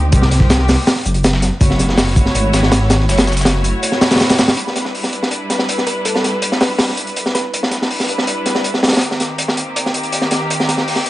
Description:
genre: drum and bass, jungle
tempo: 162 BPM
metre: 4/4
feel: straight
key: unclear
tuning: A4 = 440 Hz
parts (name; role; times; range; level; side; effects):
- muted studio string section; sustained chords; 0.0-11.1 s; Eb3 to C#5; -21 LUFS; equal; none
- dark detuned saw bass; bass; 0.0-3.7 s; F#1 to D2; -15 LUFS; equal; none
- crunchy breakbeat drum kit; drums; 0.1-11.1 s; hi-hat, kick drum, snare drum; -15 LUFS; equal; high-pass filter on kick, high-pass filter on hats, high-pass filter on snare, high-pass filter on room
- dusty soul sampler-style drum kit; drums; 0.1-4.5 s; hi-hat, shaker, snare drum; -25 LUFS; left 1 dB; high-pass filter on snare, high-pass filter on perc, high-pass filter on hats
- thumb-piano-like synth pluck; melody; 5.9-7.6 s; A4 to B4; -26 LUFS; right 1 dB; chorus, dub echo
room: light reverb, small room ambience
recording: vinyl crackle, nothing above 10.3 kHz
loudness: -13 LUFS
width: side -16 dB against mid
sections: 0.0-4.6 A section; 4.6-11.1 B section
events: none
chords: 0.0 Cm7; 0.9 F#m7; 4.6 Em7; 9.0 Cm7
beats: | 0.13 0.50 0.87 1.24 | 1.61 1.98 2.35 2.72 | 3.09 3.46 3.83 4.20 | 4.57 4.94 5.31 5.68 | 6.05 6.42 6.79 7.16 | 7.54 7.91 8.28 8.65 | 9.02 9.39 9.76 10.13 | 10.50 10.87

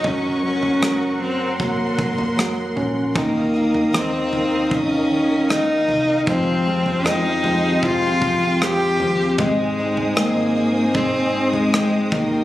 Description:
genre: pop ballad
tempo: 77 BPM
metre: 4/4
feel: straight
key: Ab major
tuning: A4 = 440 Hz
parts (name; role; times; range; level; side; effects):
- rich cello; melody; 0.0-12.4 s; Ab3 to G4; -20 LUFS; left 1 dB; none
- clear grand piano; accompaniment; 0.0-12.4 s; Eb3 to Eb4; -23 LUFS; equal; none
- warm studio string section; sustained chords; 0.0-12.4 s; Ab3 to Eb6; -28 LUFS; equal; none
- hollow-body short-scale fingered electric bass; bass; 0.0-12.4 s; Gb1 to F2; -32 LUFS; left 1 dB; none
- natural country drum kit; drums; 0.0-12.3 s; kick drum, rim click, toms; -24 LUFS; equal; none
- picked steel-string acoustic guitar; arpeggios; 3.2-12.4 s; Ab2 to Bb4; -25 LUFS; left 1 dB; none
room: light reverb, small room ambience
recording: recorded on a phone in the room, club reverb, compression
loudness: -17 LUFS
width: side -14 dB against mid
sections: 0.0-12.4 A section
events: none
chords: 0.0 Gb; 3.2 Ebsus2; 6.3 Fmadd9; 9.4 Ab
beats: | 0.04 0.82 1.60 2.38 | 3.16 3.94 4.72 5.50 | 6.28 7.05 7.83 8.61 | 9.39 10.17 10.95 11.73

